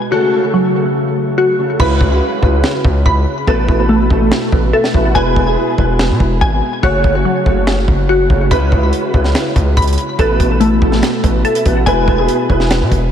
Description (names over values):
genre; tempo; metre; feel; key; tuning
hip hop, trap; 143 BPM; 4/4; half-time; C# minor; A4 = 442 Hz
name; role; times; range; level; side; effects
dark baby grand piano; accompaniment; 0.0-13.1 s; B2 to F#5; -16 LUFS; right 1 dB; ensemble chorus, low-pass filter
warbly tape-like pad; sustained chords; 0.0-1.8 s; B2 to A4; -22 LUFS; left 2 dB; chorus, built-in reverb, low-pass filter
glassy wavetable pluck; arpeggios; 0.0-13.1 s; F#3 to B5; -17 LUFS; left 2 dB; chorus, low-pass filter, ping-pong delay
distorted 808-style bass; bass; 1.8-13.1 s; E1 to B2; -15 LUFS; equal; distortion
tight funk drum kit; drums; 1.8-13.0 s; crash cymbal, finger snaps, hi-hat, kick drum, snare drum; -17 LUFS; equal; none
room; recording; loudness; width
moderate cathedral reverb, RT60 5.2 s; dreamy mix soaked in reverb; -11 LUFS; side -9 dB against mid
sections
0.0-1.8 A section; 1.8-13.1 B section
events
hi-hats muted 1.8-8.5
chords
0.1 F#m; 1.8 C#m7; 3.5 Asus2; 5.2 E; 6.8 F#m; 8.5 C#m7; 10.2 Asus2; 11.9 E